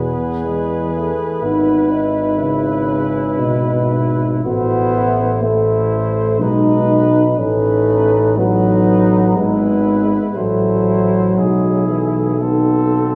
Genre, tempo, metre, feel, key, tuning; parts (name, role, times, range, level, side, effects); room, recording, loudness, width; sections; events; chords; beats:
classical, hymn-like piece for brass band; 60 BPM; 3/4; uneven beats, rubato; E major; A4 = 437 Hz
warm cornet; melody; 0.0-13.2 s; G#4 to C5; -27 LUFS; equal
mellow flugelhorn; second line; 0.0-13.2 s; C4 to G#4; -27 LUFS; equal
mellow trombone; accompaniment; 0.0-13.2 s; B2 to B3; -20 LUFS; equal
warm euphonium; accompaniment; 0.0-13.2 s; G#3 to F#4; -25 LUFS; equal
warm tuba; bass; 0.0-13.2 s; G#1 to E2; -20 LUFS; equal
wet recital hall reverb, RT60 1.7 s; recorded in a church or concert hall; -16 LUFS; mono
0.0-13.2 A section
0.0 E; 1.4 E/G#; 4.4 Am; 6.4 B; 7.4 B7/A; 9.4 E/G#; 10.4 F#m7b5/A; 11.4 E/B; 12.4 B7b9
0.46 | 1.43 2.39 3.39 | 4.45 5.43 6.41 | 7.38 8.37 9.37 | 10.37 11.37 12.42